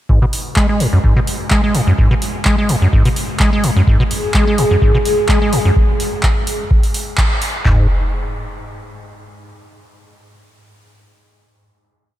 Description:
acid house; 127 BPM; 4/4; swing 53% on 16ths; A4 = 440 Hz
acid bass, square; riff; 0.1-7.9 s; Gb2 to Ab3; -16 LUFS; equal; tube saturation, sidechain pumping
booming analog drum machine; drums; 0.1-7.8 s; handclaps, kick drum, toms; -15 LUFS; equal
booming analog drum machine; drums; 0.3-7.5 s; handclaps, hi-hat; -23 LUFS; equal
warbly tape-like pad; sustained chords; 4.2-5.8 s; Ab4; -20 LUFS; left 1 dB; chorus, built-in reverb, sidechain pumping
moderate cathedral reverb, RT60 4.9 s; dreamy mix soaked in reverb; -12 LUFS; side -13 dB against mid
0.1-7.7 groove; 7.7-11.4 final note
band accent 7.2
| 0.09 0.57 1.04 1.51 | 1.98 2.46 2.93 3.40 | 3.87 4.35 4.82 5.29 | 5.76 6.24 6.71 7.18 | 7.65

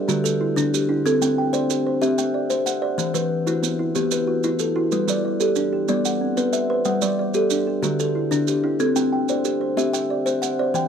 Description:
southern african traditional, mbira-style interlocking cycle; 124 BPM (dotted quarters); 12/8; straight; A4 = 440 Hz
kalimba; arpeggios; 0.0-10.9 s; D3 to G5; -24 LUFS; right 6 dB
kalimba; arpeggios; 0.1-10.9 s; D3 to G5; -21 LUFS; left 4 dB
maracas; percussion; 0.1-10.9 s; -30 LUFS; right 16 dB
small room reverb; dry, close 1970s-style studio recording; -19 LUFS; side -7 dB against mid
0.0-10.9 A section
0.1 D; 1.1 C; 3.0 Em; 4.9 G; 5.9 Bm; 6.9 G; 7.8 D; 8.8 C
0.09 0.57 | 1.05 1.54 2.02 2.50 | 2.99 3.47 3.96 4.44 | 4.92 5.41 5.89 6.38 | 6.87 7.35 7.84 8.32 | 8.81 9.29 9.78 10.27 | 10.75

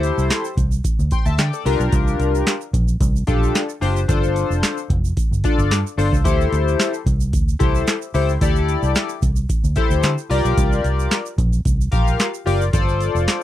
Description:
early-eighties boogie funk; 111 BPM; 4/4; straight; D minor; A4 = 440 Hz
chorused polysynth; accompaniment; 0.0-13.4 s; D4 to C6; -21 LUFS; left 4 dB
vintage muted fingered electric bass; bass; 0.0-13.3 s; F1 to D3; -20 LUFS; equal
booming analog drum machine; drums; 0.0-13.4 s; handclaps, hi-hat, kick drum, snare drum; -19 LUFS; equal
tube shaker; percussion; 0.0-13.4 s; -38 LUFS; right 27 dB
little or no reverb; dry, close 1970s-style studio recording; -16 LUFS; side -13 dB against mid
0.0-13.4 A section
0.0 D9sus4; 1.7 C9sus4; 4.1 G9sus4; 6.3 D9sus4; 10.3 C9sus4; 12.7 G9sus4
0.30 0.84 1.39 | 1.93 2.47 3.01 3.55 | 4.09 4.63 5.17 5.71 | 6.25 6.79 7.33 7.87 | 8.41 8.95 9.49 10.04 | 10.57 11.12 11.66 12.20 | 12.74 13.28

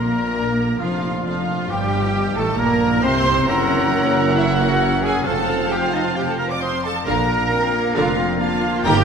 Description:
classical, dramatic, fast romantic movement for symphony orchestra; 134 BPM; 4/4; straight; A4 = 444 Hz
warm symphonic violin section; melody; 0.0-9.0 s; F4 to Bb5; -31 LUFS; left 4 dB
concert flute; second line; 0.0-8.9 s; Eb5 to D6; -29 LUFS; left 2 dB
rich symphonic violin section; second line; 0.0-9.0 s; Eb5 to D6; -29 LUFS; left 2 dB
warm clarinet; second line; 0.0-9.0 s; F3 to D4; -28 LUFS; left 4 dB
warm oboe; second line; 0.0-9.0 s; F4 to Bb5; -29 LUFS; right 2 dB
rich symphonic viola section; accompaniment; 0.0-9.0 s; D3 to C5; -26 LUFS; right 1 dB
bright trombone section; sustained chords; 0.0-9.0 s; F2 to C4; -28 LUFS; right 4 dB
mellow French horn section; sustained chords; 0.0-9.0 s; F3 to G4; -27 LUFS; left 4 dB
concert harp; arpeggios; 0.0-9.0 s; F2 to F6; -30 LUFS; left 7 dB
clear trumpet; stabs; 0.0-9.0 s; F4 to Bb5; -27 LUFS; right 1 dB
rich symphonic cello section; bass; 0.0-9.0 s; Eb4 to D5; -25 LUFS; right 4 dB
rich symphonic double bass section; bass; 0.0-9.0 s; F1 to C2; -25 LUFS; right 5 dB
wet concert hall reverb, RT60 2.6 s; -17 LUFS; side -6 dB against mid
0.0-9.0 A section
0.0 Bb; 1.7 Eb/G; 3.5 Gb7; 5.3 F; 7.1 Bb
0.37 0.82 1.26 | 1.71 2.15 2.60 3.04 | 3.49 3.93 4.37 4.81 | 5.26 5.71 6.17 6.62 | 7.07 7.52 7.97 8.41 | 8.86

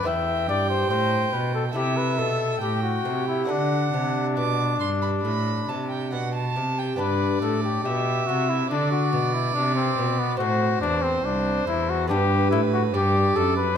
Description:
classical, baroque-style sonata movement with continuo; 70 BPM; 4/4; straight; G major; A4 = 440 Hz
warm trumpet; melody; 0.0-13.8 s; B3 to E5; -26 LUFS; left 6 dB
dark violin; second line; 0.0-13.8 s; B4 to D6; -28 LUFS; right 6 dB
lute; accompaniment; 0.0-13.7 s; E2 to E4; -30 LUFS; left 1 dB
warm cello; bass; 0.0-13.8 s; C2 to D3; -26 LUFS; right 2 dB
moderate recital hall reverb, RT60 1.5 s; -21 LUFS; side -8 dB against mid
0.0-7.0 A section; 7.0-13.8 A section
0.1 Em; 1.8 Am7; 3.5 D; 10.4 C69; 12.1 G
| 0.07 0.92 1.76 2.62 | 3.49 4.37 5.25 6.12 | 6.99 7.84 8.70 9.55 | 10.40 11.25 12.10 12.94

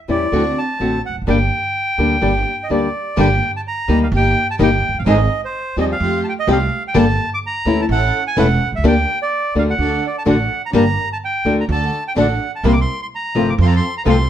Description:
tango; 127 BPM; 4/4; rubato; G minor; A4 = 440 Hz
bandoneon; melody; 0.1-14.3 s; C5 to D6; -20 LUFS; right 2 dB
nylon-string guitar; accompaniment; 0.1-14.2 s; C3 to A4; -17 LUFS; left 3 dB
dark studio string section; stabs; 0.1-14.3 s; A3 to Bb4; -23 LUFS; right 1 dB
upright bass; bass; 0.1-14.3 s; E1 to F2; -19 LUFS; right 2 dB
moderate studio reverb, RT60 0.7 s; -15 LUFS; side -10 dB against mid
0.0-3.2 A section; 3.2-14.3 B section
0.3 D7; 1.3 Gm; 4.1 Eb/G; 5.1 Ab; 6.0 Fadd9; 7.0 Gmadd9; 7.9 A; 8.8 Gm/D; 9.8 D; 10.7 Gm; 11.7 D; 12.6 C7; 13.6 F
0.33 0.80 | 1.28 1.75 2.23 2.70 | 3.18 3.65 4.12 4.59 | 5.07 5.54 6.01 6.48 | 6.95 7.43 7.90 8.37 | 8.85 9.32 9.79 10.27 | 10.74 11.22 11.69 12.17 | 12.64 13.12 13.59 14.06

